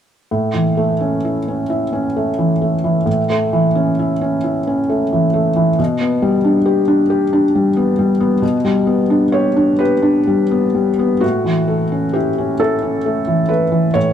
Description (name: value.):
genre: neoclassical minimalist piano.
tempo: 44 BPM (dotted quarters).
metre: 6/8.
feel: rubato.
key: unclear.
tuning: A4 = 440 Hz.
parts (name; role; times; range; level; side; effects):
felt-muted upright piano; solo; 0.3-14.1 s; A2 to C#5; -14 LUFS; equal; none.
room: light reverb.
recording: none.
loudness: -14 LUFS.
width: side -9 dB against mid.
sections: 0.3-11.2 A section; 11.2-14.1 B section.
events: none.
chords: 0.3 A; 5.8 G/B; 11.2 A.